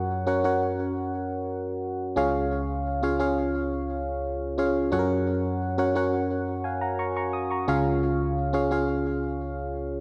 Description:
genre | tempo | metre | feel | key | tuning
pop | 87 BPM | 4/4 | straight | Db major | A4 = 440 Hz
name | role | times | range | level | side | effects
FM electric piano | solo | 0.0-10.0 s | Db2 to Eb6 | -27 LUFS | equal | chorus, delay
room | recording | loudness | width
wet lush hall reverb, RT60 2.4 s | dark, warm production | -27 LUFS | mono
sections
0.0-10.0 A section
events
none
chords
0.0 Gb; 2.2 Db; 4.9 Gb; 7.7 Db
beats
0.10 0.79 1.48 | 2.17 2.86 3.55 4.24 | 4.93 5.62 6.30 7.00 | 7.68 8.37 9.06 9.75

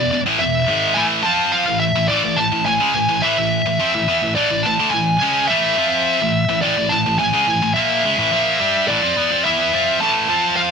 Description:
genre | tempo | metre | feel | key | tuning
metal | 106 BPM | 4/4 | straight | unclear | A4 = 440 Hz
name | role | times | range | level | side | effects
high-gain lead guitar | melody | 0.0-10.7 s | D5 to A5 | -18 LUFS | equal | distortion
heavy high-gain guitar | riff | 0.0-10.7 s | E2 to G4 | -17 LUFS | equal | distortion
room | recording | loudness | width
moderate studio reverb, RT60 0.8 s | none | -15 LUFS | side -6 dB against mid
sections
0.0-10.7 A section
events
none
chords
0.0 E; 1.0 A5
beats
0.41 | 0.97 1.54 2.11 2.67 | 3.24 3.80 4.37 4.93 | 5.50 6.07 6.63 7.20 | 7.76 8.32 8.89 9.45 | 10.02 10.58

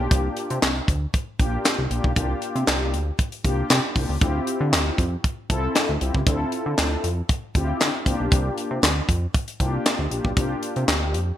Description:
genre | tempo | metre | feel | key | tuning
early-eighties boogie funk | 117 BPM | 4/4 | straight | unclear | A4 = 441 Hz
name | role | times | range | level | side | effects
mellow synth brass | accompaniment | 0.0-11.2 s | Bb3 to A4 | -28 LUFS | left 2 dB | chorus
chorused synth bass | bass | 0.0-11.3 s | Bb1 to D3 | -25 LUFS | equal | none
tight funk drum kit | drums | 0.1-11.3 s | handclaps, hi-hat, kick drum, snare drum | -22 LUFS | equal | gated reverb
room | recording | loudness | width
light reverb, small room ambience | bright 1980s-style digital production | -20 LUFS | side -11 dB against mid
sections
0.0-11.4 A section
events
none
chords
0.0 C9sus4; 4.2 Dm11; 8.1 C9sus4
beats
| 0.11 0.62 1.14 1.65 | 2.16 2.67 3.19 3.70 | 4.21 4.73 5.24 5.75 | 6.26 6.78 7.29 7.80 | 8.32 8.83 9.34 9.85 | 10.37 10.88

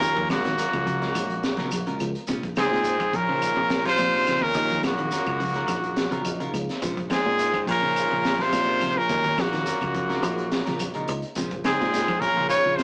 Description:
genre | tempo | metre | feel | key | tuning
afrobeat | 106 BPM | 4/4 | straight | Bb minor | A4 = 440 Hz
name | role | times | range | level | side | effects
breathy trumpet | melody | 0.0-12.8 s | Gb4 to Db5 | -24 LUFS | equal | none
bright alto saxophone | second line | 0.0-12.8 s | Bb3 to F4 | -33 LUFS | equal | none
bright baritone saxophone | second line | 0.0-12.8 s | Gb2 to Db3 | -31 LUFS | equal | none
electric guitar at the edge of break-up | stabs | 0.0-12.5 s | Gb3 to C5 | -36 LUFS | equal | none
fingered electric bass | bass | 0.0-12.8 s | Bb1 to Bb2 | -31 LUFS | equal | none
crunchy breakbeat drum kit | drums | 0.0-12.8 s | hi-hat, kick drum, snare drum | -30 LUFS | equal | none
shekere | percussion | 0.0-12.8 s | none | -40 LUFS | equal | none
clean electric guitar | arpeggios | 0.2-12.8 s | C3 to F3 | -35 LUFS | equal | none
congas | percussion | 0.2-12.4 s | none | -36 LUFS | equal | none
bell-like tine electric piano | accompaniment | 0.3-12.7 s | Ab3 to F5 | -37 LUFS | equal | none
claves | percussion | 0.3-12.7 s | none | -39 LUFS | equal | none
room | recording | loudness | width
moderate studio reverb, RT60 0.6 s | rough rehearsal-room recording, tube saturation, small speaker sound | -21 LUFS | side -34 dB against mid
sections
0.0-12.8 A section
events
tine electric piano fill 6.0-6.8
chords
0.0 Ebm9; 2.3 Bbm9; 4.5 Ebm9; 6.8 Bbm9; 9.1 Ebm9; 11.4 Bbm9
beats
| 0.02 0.58 1.15 1.72 | 2.28 2.85 3.42 3.98 | 4.55 5.12 5.68 6.25 | 6.82 7.39 7.96 8.52 | 9.09 9.66 10.23 10.80 | 11.37 11.93 12.50

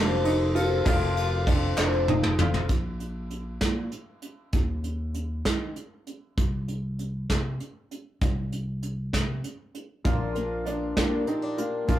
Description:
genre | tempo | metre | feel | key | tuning
indie folk with a building arrangement | 65 BPM (dotted quarters) | 6/8 | straight | Bb major | A4 = 440 Hz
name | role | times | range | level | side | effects
picked twelve-string acoustic guitar | accompaniment | 0.0-2.7, 10.0-12.0 s | Bb2 to Bb4 | -30 LUFS | left 3 dB | none
clear upright piano | arpeggios | 0.0-2.7, 10.0-12.0 s | D4 to F4 | -30 LUFS | right 2 dB | none
fingered electric bass | bass | 0.0-12.0 s | F1 to Eb3 | -30 LUFS | equal | none
soft brush drum kit | drums | 0.2-12.0 s | hi-hat, kick drum, ride cymbal, snare drum, toms | -27 LUFS | equal | none
group handclap | percussion | 0.9-2.6 s | none | -34 LUFS | left 2 dB | none
fingerpicked old ladder-braced acoustic guitar | accompaniment | 10.1-12.0 s | Bb2 to G4 | -32 LUFS | left 2 dB | none
room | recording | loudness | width
moderate studio ambience, RT60 0.5 s | rough rehearsal-room recording | -24 LUFS | side -12 dB against mid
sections
0.0-2.7 A section; 2.7-12.0 B section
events
drum fill 1.8-2.7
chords
0.0 F; 2.7 N.C.; 10.1 Bb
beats
| 0.87 1.78 | 2.70 3.62 | 4.54 5.46 | 6.38 7.30 | 8.21 9.13 | 10.05 10.97 | 11.89

